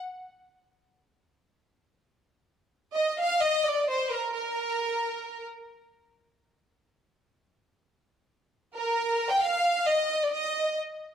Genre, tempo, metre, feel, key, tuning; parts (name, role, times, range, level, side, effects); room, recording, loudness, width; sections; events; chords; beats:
mexican folk; free time; Eb major; A4 = 439 Hz
clear studio violin section; solo; 3.0-5.4, 8.8-10.8 s; Bb4 to G5; -25 LUFS; equal
moderate recital hall reverb, RT60 1.7 s; close, detailed microphones; -25 LUFS; side -8 dB against mid
0.0-2.9 A section; 2.9-11.1 B section
free time